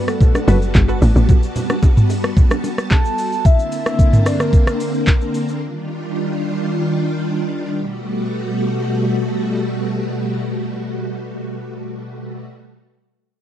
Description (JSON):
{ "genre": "amapiano", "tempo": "111 BPM", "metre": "4/4", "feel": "straight", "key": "G major", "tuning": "A4 = 440 Hz", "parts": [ { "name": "soft octave-layered synth lead", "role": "melody", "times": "0.0-4.9 s", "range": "A4 to A5", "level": "-24 LUFS", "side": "left 1 dB", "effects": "chorus, phaser, tape echo, plate reverb" }, { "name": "string machine, violins", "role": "sustained chords", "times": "0.0-12.4 s", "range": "B2 to A5", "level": "-21 LUFS", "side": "equal", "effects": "ensemble chorus" }, { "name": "smooth R&B drum kit", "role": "drums", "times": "0.1-5.6 s", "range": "handclaps, hi-hat, kick drum, rim click, shaker, toms", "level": "-13 LUFS", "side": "equal", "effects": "vintage 12-bit sampler grit" }, { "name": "congas and bongos", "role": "percussion", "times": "0.2-3.0 s", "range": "none", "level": "-25 LUFS", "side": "right 3 dB", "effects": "none" }, { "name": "punchy chord stab", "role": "stabs", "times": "0.5-1.0 s", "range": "F#4 to B4", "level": "-28 LUFS", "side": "equal", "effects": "chorus, tape echo, plate reverb" }, { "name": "tight log drum bass", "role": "bass", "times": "0.5-1.3 s", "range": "F#1 to A1", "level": "-13 LUFS", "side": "equal", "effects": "none" } ], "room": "light reverb", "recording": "dark, warm production", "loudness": "-15 LUFS", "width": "side -11 dB against mid", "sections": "0.0-7.8 A section; 7.8-12.1 B section", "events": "drop 0.0-7.8", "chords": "0.0 Gmaj9; 3.5 Bbmaj9; 5.6 Ebmaj9; 7.8 Gmaj9", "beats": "0.21 0.75 | 1.29 1.83 2.37 2.91 | 3.45 3.99 4.53 5.07 | 5.61 6.15 6.69 7.23 | 7.78 8.31 8.86 9.40 | 9.94 10.48 11.02 11.56" }